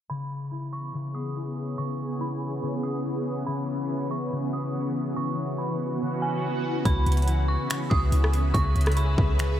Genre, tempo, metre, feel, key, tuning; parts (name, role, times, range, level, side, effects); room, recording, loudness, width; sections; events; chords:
hip hop, atmospheric cloud-rap; 142 BPM; 4/4; half-time; C# minor; A4 = 441 Hz
dark detuned synth bell; melody; 0.1-9.6 s; G#5 to D#6; -34 LUFS; right 3 dB; chorus, low-pass filter, diffuse ambient delay
shimmering ambient pad; sustained chords; 0.9-9.6 s; E3 to E5; -30 LUFS; equal; chorus, built-in reverb, phaser, sidechain pumping
concert harp; arpeggios; 0.1-9.6 s; C#3 to E4; -32 LUFS; left 2 dB; low-pass filter, diffuse ambient delay
clean 808-style bass; bass; 6.9-9.6 s; C#2; -23 LUFS; equal
trap drum kit; drums; 6.9-9.5 s; finger snaps, hi-hat, kick drum, rim click; -27 LUFS; equal
moderate huge ambient reverb, RT60 6.7 s; dreamy mix soaked in reverb, low-pass filter; -24 LUFS; side -11 dB against mid
0.1-6.9 A section; 6.9-9.6 B section
filter sweep 0.1-6.9
0.1 C#m7